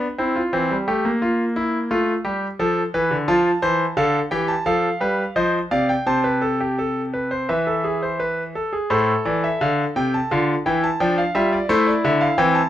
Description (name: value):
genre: classical, baroque-style 3-part fugue for grand piano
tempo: 86 BPM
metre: 4/4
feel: straight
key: F major, A minor from 3.3 s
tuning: A4 = 439 Hz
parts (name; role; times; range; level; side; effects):
- bright concert grand piano; solo; 0.0-12.7 s; A2 to A5; -18 LUFS; equal; none
room: light reverb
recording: dark, warm production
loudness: -18 LUFS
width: side -12 dB against mid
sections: 0.0-8.9 A section; 8.9-12.7 B section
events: none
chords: 0.0 N.C.; 0.5 C7/E; 1.9 F; 4.7 F7; 6.1 Am/C; 7.5 E; 8.9 Am; 10.3 Dm; 11.7 Am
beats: | 0.53 1.22 1.91 2.60 | 3.28 3.97 4.66 5.35 | 6.06 6.77 7.49 8.20 | 8.91 9.61 10.31 11.00 | 11.69 12.39